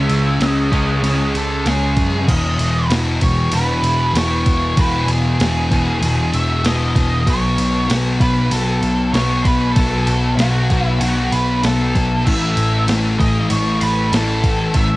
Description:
rock, shoegaze and dream pop; 96 BPM; 4/4; straight; E major; A4 = 440 Hz
octave-fuzz lead guitar; melody; 0.0-15.0 s; F#4 to E5; -22 LUFS; right 2 dB; distortion, cassette tape, tape echo
overdriven electric guitar; riff; 0.0-2.3 s; C#3 to E4; -30 LUFS; right 4 dB
overdriven electric guitar; riff; 0.0-2.3 s; C#3 to C#4; -23 LUFS; right 2 dB; cassette tape
thick fuzz guitar; riff; 0.0-15.0 s; E2 to C#4; -19 LUFS; left 2 dB; distortion, analog chorus, cassette tape
vintage muted picked electric bass; bass; 0.0-15.0 s; E1 to F#2; -20 LUFS; equal
crisp 8-bit digital drum machine; drums; 0.1-14.9 s; crash cymbal, kick drum, ride cymbal, snare drum; -21 LUFS; equal; overdrive, cassette tape
digital ambience; home recording on cassette; -14 LUFS; side -19 dB against mid
0.0-2.3 A section; 2.3-15.0 A section
0.0 C#m; 2.3 E; 7.3 B5; 12.2 A5

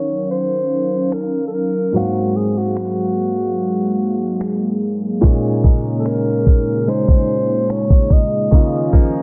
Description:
contemporary R&B; 73 BPM; 4/4; straight; A4 = 440 Hz
breathy alto saxophone; melody; 0.0-8.9 s; Gb4 to Eb5; -23 LUFS; equal; digital delay
warm grand piano; accompaniment; 0.0-9.2 s; Ab2 to F5; -26 LUFS; equal
hollow soft pad; sustained chords; 0.0-9.2 s; Db3 to F5; -24 LUFS; equal; chorus
smooth R&B drum kit; drums; 1.1-9.1 s; finger snaps, kick drum; -14 LUFS; equal; soft clipping on snare
direct-recorded clean electric guitar; arpeggios; 5.2-9.2 s; Bb2 to Eb4; -24 LUFS; equal
light reverb; dense, heavily limited modern master, low-pass filter; -17 LUFS; mono
0.0-9.2 A section
filter sweep 0.0-9.2
0.0 Ebm9; 1.9 Ab13; 5.2 Bbm11; 8.5 Db69

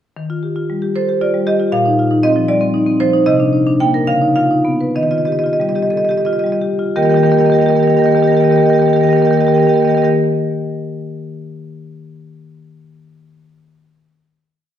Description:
classical, contemporary piece for solo marimba; 56-79 BPM (dotted quarters); 6/8; rubato; Eb major; A4 = 440 Hz
marimba with medium hard mallets; solo; 0.2-10.1 s; Bb2 to G5; -12 LUFS; equal
wet recital hall reverb, RT60 1.6 s; dark, warm production; -12 LUFS; side -10 dB against mid
0.2-7.0 A section; 7.0-11.2 final chord
slowing down 2.5-7.0
0.2 Ebadd9; 1.7 Bbsus24; 3.3 Cm9; 4.1 Db9; 5.0 Ebadd9; 7.0 Eb

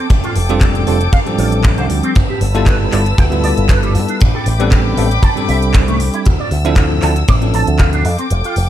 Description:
nu-disco, nu disco; 117 BPM; 4/4; swing 53% on 16ths; A4 = 441 Hz
warm chamber violin section; sustained chords; 0.0-8.7 s; A4 to E6; -23 LUFS; left 2 dB; sidechain pumping
electric guitar with an envelope filter; riff; 0.0-8.5 s; G3 to D6; -23 LUFS; right 3 dB; ensemble chorus, digital delay
picked electric bass with an envelope filter; bass; 0.1-8.7 s; F1 to G2; -16 LUFS; equal
house drum kit; drums; 0.1-8.7 s; handclaps, hi-hat; -26 LUFS; equal; small room ambience
kick drum; drums; 0.1-7.9 s; -14 LUFS; equal; small room ambience
barky tine electric piano; accompaniment; 0.5-8.0 s; F3 to A4; -19 LUFS; equal; slow stereo tremolo, sidechain pumping, digital delay
little or no reverb; dark, warm production; -11 LUFS; side -12 dB against mid
0.0-8.7 A section
kick drops out 8.3-8.7
0.0 F69; 2.2 G13; 4.2 Am11; 6.3 Dm9; 8.1 F69

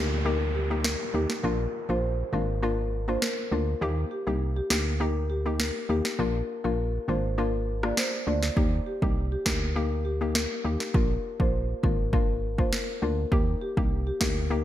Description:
dancehall; 101 BPM; 4/4; straight; Eb major; A4 = 440 Hz
marimba with soft mallets; melody; 0.0-14.6 s; G4 to D5; -32 LUFS; left 3 dB; ping-pong delay
hollow square pluck; accompaniment; 0.0-14.6 s; Bb3 to G4; -32 LUFS; left 2 dB; chorus
solid FM bass; bass; 0.0-14.6 s; Ab1 to Eb2; -28 LUFS; right 1 dB
downlifter; sound effects; 0.0-3.8 s; -39 LUFS; right 2 dB
afro-pop drum kit; drums; 0.8-14.4 s; kick drum, rim click, snare drum; -27 LUFS; right 1 dB; gated reverb
light reverb, digital ambience; bright 1980s-style digital production; -25 LUFS; side -12 dB against mid
0.0-14.6 A section
break 0.0-8.6
0.0 Eb; 1.4 Bb; 3.8 Eb; 6.2 Bb; 8.6 Eb; 10.9 Bb; 13.3 Eb

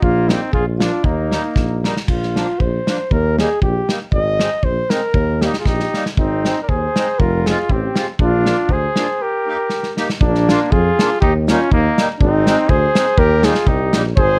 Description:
alpine folk, alpine dance band; 119 BPM; 2/4; swing 54% on 8ths, rubato; Eb major; A4 = 440 Hz
mellow flugelhorn; melody; 0.0-14.4 s; D4 to Eb5; -22 LUFS; equal
warm trumpet; second line; 0.0-1.8, 5.4-14.4 s; Bb3 to Bb4; -25 LUFS; equal
warm tuba; bass; 0.0-14.4 s; F1 to F2; -22 LUFS; equal
loose indie drum kit; drums; 0.0-14.3 s; crash cymbal, hi-hat, kick drum, snare drum; -20 LUFS; equal
accordion; accompaniment; 0.3-14.0 s; F3 to G4; -26 LUFS; equal
light reverb; -17 LUFS; mono
0.0-2.1 A section; 2.1-10.2 B section; 10.2-14.4 B section
drum fill 1.6-2.1, 5.7-6.2, 9.7-10.2; break 9.2-10.2
0.0 Eb/Bb; 0.5 Bb7; 1.0 Eb; 2.1 Bb; 3.1 Eb; 4.1 Ab; 5.1 Eb; 6.2 Ab; 7.2 Fm; 8.2 Bb7; 9.2 Eb; 10.2 Bb; 11.2 Eb; 12.2 Ab; 13.2 Eb

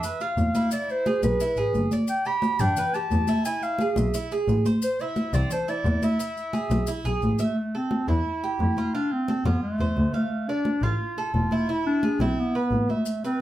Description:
latin, Cuban son and guajira; 175 BPM; 4/4; straight; A minor; A4 = 436 Hz
mellow clarinet; melody; 0.0-13.4 s; A3 to B5; -27 LUFS; equal; plate reverb
Cuban tres; arpeggios; 0.0-13.4 s; C4 to F5; -31 LUFS; right 4 dB
congas; percussion; 0.0-13.4 s; -27 LUFS; equal
maracas; percussion; 0.0-7.6, 13.1-13.4 s; -41 LUFS; left 5 dB
bright double bass; bass; 0.4-12.8 s; E1 to G2; -26 LUFS; left 1 dB
wet studio ambience, RT60 0.5 s; heard from further back in the room; -22 LUFS; side -13 dB against mid
0.0-7.6 A section; 7.6-13.4 B section
0.0 B(b5, no3); 0.7 E; 2.1 G; 3.5 E; 4.8 Am (rootless); 6.2 E; 7.6 Am7; 8.9 F; 10.3 Dm; 11.7 E5

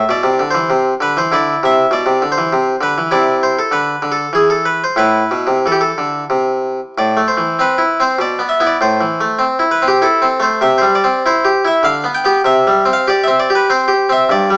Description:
classical, baroque-style suite movement for harpsichord; 99 BPM; 3/4; rubato; A minor; A4 = 439 Hz
harpsichord; solo; 0.0-14.6 s; G2 to G5; -11 LUFS; equal
moderate stone room reverb, RT60 1.3 s; small speaker sound; -11 LUFS; side -27 dB against mid
0.0-7.0 A section; 7.0-14.6 B section
0.0 E7(no3); 0.7 Cmaj9; 1.3 E5; 2.5 Cmaj9; 3.1 C69; 3.7 N.C.; 5.0 Am; 8.2 E5/B; 8.8 Am; 10.6 C; 11.8 G7/D; 12.5 C5

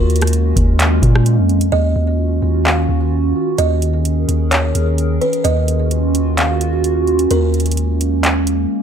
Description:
hip hop, atmospheric cloud-rap; 129 BPM; 4/4; half-time; Eb minor; A4 = 442 Hz
buzzing kalimba; melody; 0.0-8.8 s; Bb4 to F5; -23 LUFS; right 1 dB; tape echo
warbly tape-like pad; sustained chords; 0.0-8.8 s; Eb3 to Bb4; -18 LUFS; right 2 dB; chorus, built-in reverb, phaser, sidechain pumping
long sustained 808-style bass; bass; 0.0-8.7 s; Eb2 to Bb2; -16 LUFS; equal
booming analog drum machine; drums; 0.1-8.6 s; handclaps, hi-hat, kick drum, rim click; -18 LUFS; equal
light reverb, digital ambience; -13 LUFS; side -8 dB against mid
0.0-1.7 A section; 1.7-8.8 B section
0.0 Bbm7/Eb; 1.7 Ebm9; 3.6 Eb7sus4; 5.4 Ebm9; 7.3 Bbm7/Eb

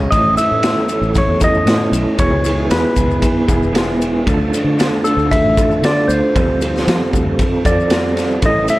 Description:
psychedelic rock; 116 BPM; 4/4; straight; A4 = 439 Hz
electric guitar through a small old amp; riff; 0.0-8.8 s; A2 to A4; -17 LUFS; right 1 dB; rotary speaker
fingered electric bass; bass; 0.0-8.7 s; E1 to F3; -20 LUFS; equal
tanpura; drone; 0.0-5.6 s; barely audible
clean lap steel guitar; melody; 0.1-8.8 s; A4 to E5; -18 LUFS; equal; slapback echo
raw garage drum kit; drums; 0.1-8.8 s; kick drum, ride cymbal, snare drum; -18 LUFS; equal
maracas; percussion; 0.1-8.8 s; -34 LUFS; left 14 dB
light reverb, small room ambience; -12 LUFS; side -18 dB against mid
0.1-8.8 A section
0.1 A; 2.2 E; 4.3 Dm; 6.3 Fadd9

